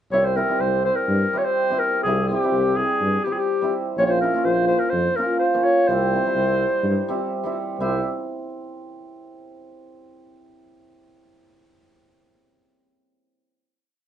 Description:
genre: klezmer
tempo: 125 BPM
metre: 4/4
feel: straight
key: C phrygian dominant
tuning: A4 = 440 Hz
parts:
  - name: breathy clarinet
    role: melody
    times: 0.1-8.0 s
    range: G4 to Db5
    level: -21 LUFS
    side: left 1 dB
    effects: none
  - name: cimbalom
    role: accompaniment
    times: 0.1-8.0 s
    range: G3 to G4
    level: -24 LUFS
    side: right 1 dB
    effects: none
  - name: warm tuba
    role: bass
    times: 0.1-8.0 s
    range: Bb1 to G2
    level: -25 LUFS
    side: left 1 dB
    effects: none
room: moderate studio ambience, RT60 0.5 s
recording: band playing live in one room, nothing above 10.3 kHz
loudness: -19 LUFS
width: side -10 dB against mid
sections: 0.1-7.8 A section; 7.8-9.7 final chord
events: none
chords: 0.1 C; 4.0 Bbm; 5.9 C

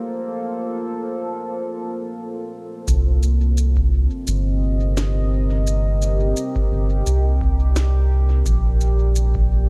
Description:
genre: ambient dub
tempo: 86 BPM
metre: 4/4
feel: swing 55% on 16ths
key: C dorian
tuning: A4 = 440 Hz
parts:
  - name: deep dark ambient pad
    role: sustained chords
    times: 0.0-9.7 s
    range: Bb3 to Eb5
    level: -29 LUFS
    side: equal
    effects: chorus, built-in reverb
  - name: bubbling stepped-filter texture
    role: texture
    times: 0.0-2.9 s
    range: C5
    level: -49 LUFS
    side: equal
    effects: none
  - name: round analog bass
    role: bass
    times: 2.9-9.7 s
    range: G1 to C2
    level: -20 LUFS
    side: equal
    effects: none
  - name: electronic kick drum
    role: drums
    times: 2.9-9.5 s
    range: none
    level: -26 LUFS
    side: equal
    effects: overdrive, studio ambience
  - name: electronic shaker and snare drum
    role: drums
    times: 2.9-9.3 s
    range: none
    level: -32 LUFS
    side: equal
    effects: overdrive, studio ambience, dub echo
room: little or no reverb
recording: dark, warm production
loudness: -20 LUFS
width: mono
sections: 0.0-2.9 A section; 2.9-9.7 B section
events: none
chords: 0.0 Bbmaj7; 2.9 Cm9; 8.5 Bb

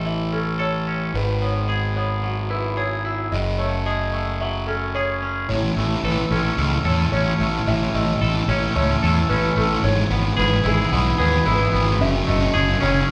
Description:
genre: rock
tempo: 111 BPM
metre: 4/4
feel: straight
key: A lydian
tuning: A4 = 440 Hz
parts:
  - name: felt-muted upright piano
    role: arpeggios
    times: 0.0-13.1 s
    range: G#4 to E5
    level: -30 LUFS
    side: equal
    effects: none
  - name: twangy electric guitar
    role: arpeggios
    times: 0.0-13.1 s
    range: F#2 to A4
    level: -27 LUFS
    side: equal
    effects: none
  - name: fuzz picked electric bass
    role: bass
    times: 0.0-13.0 s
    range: F#1 to E2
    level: -25 LUFS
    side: equal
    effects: overdrive
  - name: sludgy distorted guitar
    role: riff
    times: 5.5-13.1 s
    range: F#2 to E3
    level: -25 LUFS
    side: equal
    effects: overdrive
room: wet large studio reverb, RT60 0.8 s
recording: band playing live in one room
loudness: -21 LUFS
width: mono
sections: 0.0-5.5 A section; 5.5-13.1 B section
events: build-up 5.5-13.1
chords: 0.0 A; 1.2 Eadd9/G#; 3.3 F#madd9; 5.5 A; 9.8 E/G#; 12.0 F#madd9

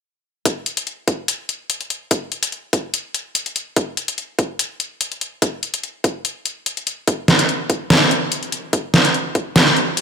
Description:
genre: heavy wobble dubstep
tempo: 145 BPM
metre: 4/4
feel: half-time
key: none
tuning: none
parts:
  - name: dubstep drum kit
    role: drums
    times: 0.5-10.0 s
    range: hi-hat, snare drum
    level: -17 LUFS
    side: equal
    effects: none
  - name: electronic kick drum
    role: drums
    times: 0.5-9.4 s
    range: none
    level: -20 LUFS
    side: right 1 dB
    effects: high-pass filter on kick, high-pass filter on room
room: moderate lush hall reverb, RT60 2.0 s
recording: none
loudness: -18 LUFS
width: side -6 dB against mid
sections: 0.5-10.0 A section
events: none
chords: none

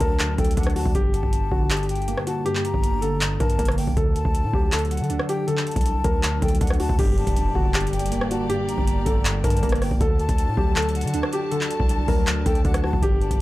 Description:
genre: hip hop, trap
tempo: 159 BPM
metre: 4/4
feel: half-time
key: G harmonic minor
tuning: A4 = 440 Hz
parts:
  - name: dark grand piano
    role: melody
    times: 0.0-13.4 s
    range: F#4 to Bb4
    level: -28 LUFS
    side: equal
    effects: none
  - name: breathy jazz flute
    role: second line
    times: 0.0-13.4 s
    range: F#5 to Bb5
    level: -32 LUFS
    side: left 3 dB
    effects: digital delay
  - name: warbly lo-fi synth keys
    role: accompaniment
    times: 0.0-13.4 s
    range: G2 to D4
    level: -28 LUFS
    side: equal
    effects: chorus
  - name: hard-hitting 808-style bass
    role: bass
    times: 0.0-13.4 s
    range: G1 to D3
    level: -26 LUFS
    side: equal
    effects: none
  - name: booming analog drum machine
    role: drums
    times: 0.0-13.4 s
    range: crash cymbal, handclaps, hi-hat, kick drum, rim click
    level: -23 LUFS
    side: equal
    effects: overdrive
  - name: warm symphonic string section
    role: sustained chords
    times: 7.0-13.4 s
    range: D3 to A5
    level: -34 LUFS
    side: equal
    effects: none
  - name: impact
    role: sound effects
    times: 7.0-8.5 s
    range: none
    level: -31 LUFS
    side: equal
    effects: none
room: light reverb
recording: dark, warm production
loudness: -20 LUFS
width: side -17 dB against mid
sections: 0.0-7.0 A section; 7.0-13.4 B section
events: impact 7.0-8.5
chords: 0.0 D; 0.9 Gm; 4.0 D; 7.0 Gm; 10.0 D

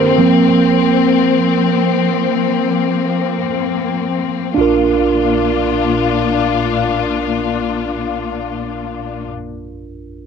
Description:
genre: pop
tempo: free time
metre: none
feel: none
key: Bb major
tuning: A4 = 440 Hz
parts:
  - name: tine electric piano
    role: accompaniment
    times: 0.0-10.3 s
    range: Bb1 to C5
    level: -16 LUFS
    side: right 6 dB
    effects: none
  - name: warm studio string section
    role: sustained chords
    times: 0.0-9.3 s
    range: G2 to F4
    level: -16 LUFS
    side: left 10 dB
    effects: none
room: little or no reverb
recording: dry, close 1970s-style studio recording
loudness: -13 LUFS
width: side -6 dB against mid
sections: 0.0-4.6 A section; 4.6-9.3 B section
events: slowing down 0.0-4.6; tine electric piano solo 0.0-4.6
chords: 0.2 Bbsus2; 4.6 Bb

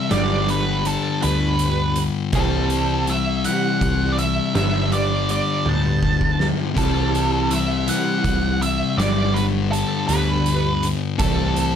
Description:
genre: quiet-loud alternative rock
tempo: 54 BPM (dotted quarters)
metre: 6/8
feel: straight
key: unclear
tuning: A4 = 441 Hz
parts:
  - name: octave-fuzz lead guitar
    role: melody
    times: 0.0-11.8 s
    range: A4 to A5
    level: -24 LUFS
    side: right 3 dB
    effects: distortion, slapback echo
  - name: electric guitar at the edge of break-up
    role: arpeggios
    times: 0.0-11.8 s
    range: C3 to D4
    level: -27 LUFS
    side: right 6 dB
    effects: ensemble chorus
  - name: thick fuzz guitar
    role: riff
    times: 0.0-11.8 s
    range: G2 to C4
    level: -22 LUFS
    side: left 8 dB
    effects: distortion
  - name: hollow-body short-scale picked electric bass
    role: bass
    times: 0.1-11.8 s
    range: G1 to D2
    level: -24 LUFS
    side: right 1 dB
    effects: none
  - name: oversized low-tuned drum kit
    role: drums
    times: 0.1-11.7 s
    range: crash cymbal, hi-hat, kick drum, snare drum, toms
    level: -26 LUFS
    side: right 2 dB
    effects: none
room: light reverb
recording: none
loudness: -18 LUFS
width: side -8 dB against mid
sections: 0.0-11.8 A section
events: half time 0.0-11.8; drum fill 5.7-6.8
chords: 0.1 G; 2.3 C6; 4.6 Gadd9; 6.8 C6; 9.0 G; 11.2 C6

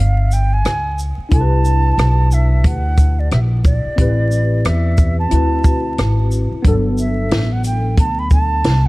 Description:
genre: hip hop, jazz-hop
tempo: 90 BPM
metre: 4/4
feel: swing 60% on 16ths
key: G major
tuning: A4 = 444 Hz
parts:
  - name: mellow jazz flute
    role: melody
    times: 0.0-8.9 s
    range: D5 to B5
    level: -23 LUFS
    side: right 2 dB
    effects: analog delay
  - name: upright bass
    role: bass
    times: 0.0-8.9 s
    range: G1 to E2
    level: -15 LUFS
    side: equal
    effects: none
  - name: compact cocktail drum kit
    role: drums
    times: 0.3-8.8 s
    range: hi-hat, kick drum, rim click, shaker, snare drum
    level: -15 LUFS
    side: equal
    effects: none
  - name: tine electric piano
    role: accompaniment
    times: 1.3-8.9 s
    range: F#3 to B4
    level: -23 LUFS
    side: left 2 dB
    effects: ensemble chorus
room: little or no reverb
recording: dark, warm production, vinyl crackle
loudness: -13 LUFS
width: side -21 dB against mid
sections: 0.0-6.6 A section; 6.6-8.9 B section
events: break 0.0-1.3; flute solo 6.6-8.9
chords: 0.0 Fmadd9/G; 1.3 Cmaj9; 4.0 Am7; 5.3 D13; 6.6 Gmaj9

